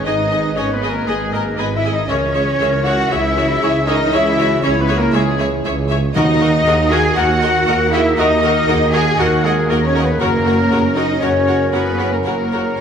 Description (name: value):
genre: cinematic, heroic adventure film score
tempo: 118 BPM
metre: 4/4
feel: straight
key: unclear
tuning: A4 = 440 Hz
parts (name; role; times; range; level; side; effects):
- rich symphonic violin section; melody; 0.0-12.8 s; G#4 to G#5; -24 LUFS; left 5 dB; none
- bright flute section; second line; 0.0-12.8 s; G#4 to G#5; -25 LUFS; left 2 dB; none
- warm clarinet; second line; 0.0-12.8 s; E4 to C#5; -27 LUFS; left 2 dB; none
- warm oboe; second line; 0.0-12.8 s; G#4 to G#5; -26 LUFS; equal; none
- dark French horn section; sustained chords; 0.0-12.8 s; F#4 to D#5; -26 LUFS; left 3 dB; none
- warm trombone section; sustained chords; 0.0-12.8 s; C#3 to C#4; -25 LUFS; right 2 dB; none
- dark trumpet section; stabs; 0.0-12.8 s; B3 to G#5; -24 LUFS; left 1 dB; none
- mellow tuba; bass; 0.0-12.7 s; F#1 to D#2; -23 LUFS; right 3 dB; none
- rich symphonic cello section; bass; 0.0-12.8 s; G#3 to G#4; -20 LUFS; right 2 dB; none
- clear symphonic violin section; second line; 0.1-12.6 s; C#5 to G#5; -28 LUFS; left 3 dB; none
- clear symphonic viola section; accompaniment; 0.1-12.6 s; F#4 to D#5; -24 LUFS; equal; none
- rich symphonic double bass section; bass; 0.1-12.7 s; G#1 to F#2; -23 LUFS; right 2 dB; none
- timpani; percussion; 6.2-6.9 s; D#3; -23 LUFS; left 1 dB; none
room: wet scoring stage reverb, RT60 1.5 s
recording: none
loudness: -13 LUFS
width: side -7 dB against mid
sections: 0.0-12.8 A section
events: none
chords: 0.0 G#m; 2.1 C#m; 6.2 D#m; 10.2 F#